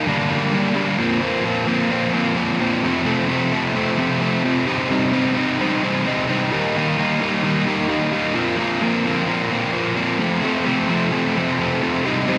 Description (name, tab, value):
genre	rock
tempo	130 BPM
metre	4/4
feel	straight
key	unclear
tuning	A4 = 435 Hz
part	overdriven electric guitar	solo	0.0-12.4 s	F2 to Eb4	-20 LUFS	equal	slapback echo
room	wet lush hall reverb, RT60 2.1 s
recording	big arena sound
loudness	-20 LUFS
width	mono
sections	1.0-12.4 A section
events	none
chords	0.1 Gm; 1.0 Bbsus2; 2.8 F; 4.7 Cm; 6.5 Eb; 8.4 Bbsus2; 10.2 F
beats	0.06 0.53 | 0.99 1.45 1.92 2.38 | 2.84 3.30 3.76 4.22 | 4.68 5.14 5.60 6.06 | 6.52 6.98 7.44 7.90 | 8.36 8.82 9.28 9.74 | 10.20 10.66 11.12 11.59 | 12.05